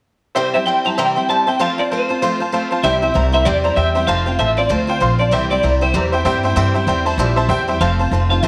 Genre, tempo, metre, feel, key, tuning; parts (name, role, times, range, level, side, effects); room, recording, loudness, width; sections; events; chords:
rockabilly; 193 BPM; 4/4; swing 59% on 8ths; C mixolydian; A4 = 436 Hz
honky-tonk upright piano; accompaniment; 0.3-8.5 s; C5 to C6; -22 LUFS; equal
electric guitar through a small old amp; melody; 0.4-8.5 s; C5 to A5; -21 LUFS; equal; tremolo, tape echo
picked steel-string acoustic guitar; accompaniment; 0.4-8.5 s; C3 to C5; -25 LUFS; equal
upright bass; bass; 2.8-8.5 s; F1 to G2; -21 LUFS; equal
moderate echo chamber reverb, RT60 1.8 s, small room ambience; -17 LUFS; mono
0.4-2.8 A section; 2.8-8.5 B section
0.4 C; 1.6 F; 2.8 C; 4.1 F; 5.3 C; 7.8 F